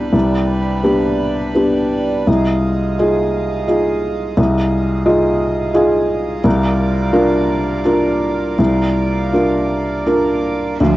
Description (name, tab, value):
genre	neoclassical piano and strings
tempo	85 BPM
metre	3/4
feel	rubato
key	unclear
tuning	A4 = 440 Hz
part	felt-muted upright piano	accompaniment	0.0-11.0 s	C2 to Bb4	-14 LUFS	equal	cassette tape
part	pedal harmonium	sustained chords	0.0-11.0 s	G3 to Eb5	-23 LUFS	right 4 dB	stereo widening, cassette tape
part	rich cello	second line	10.8-11.0 s	F3	-18 LUFS	right 6 dB	cassette tape
room	moderate booth ambience, RT60 0.2 s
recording	home recording on cassette, nothing above 7.7 kHz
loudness	-14 LUFS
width	side -16 dB against mid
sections	0.0-10.8 A section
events	none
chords	0.0 G/C; 2.3 Fm7/C; 6.4 Bbadd9/C